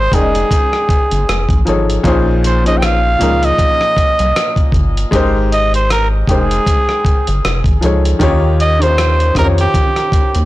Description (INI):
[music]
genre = R&B, neo-soul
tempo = 78 BPM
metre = 4/4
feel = swing 57% on 16ths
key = Ab major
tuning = A4 = 439 Hz
[part]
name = warm trumpet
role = melody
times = 0.0-10.5 s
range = G4 to G5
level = -16 LUFS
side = right 1 dB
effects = tape echo
[part]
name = warm upright piano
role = accompaniment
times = 0.0-10.5 s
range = Bb2 to G5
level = -17 LUFS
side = left 2 dB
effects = none
[part]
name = rubbery square bass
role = bass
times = 0.0-10.5 s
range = F1 to F2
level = -15 LUFS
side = equal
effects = tube saturation
[part]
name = dusty soul sampler-style drum kit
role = drums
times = 0.1-10.5 s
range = hi-hat, kick drum, rim click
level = -16 LUFS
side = equal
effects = soft clipping on snare
[sound]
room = light reverb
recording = blown-out, overdriven recording, vinyl crackle, overdrive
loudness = -11 LUFS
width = side -16 dB against mid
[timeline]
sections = 0.0-10.5 A section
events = none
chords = 0.0 Abmaj9; 1.3 F7alt; 2.0 Bbm11; 5.1 Abmaj9; 7.4 F7alt; 8.2 Eb9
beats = 0.51 1.28 | 2.05 2.81 3.58 4.35 | 5.12 5.89 6.66 7.43 | 8.20 8.97 9.74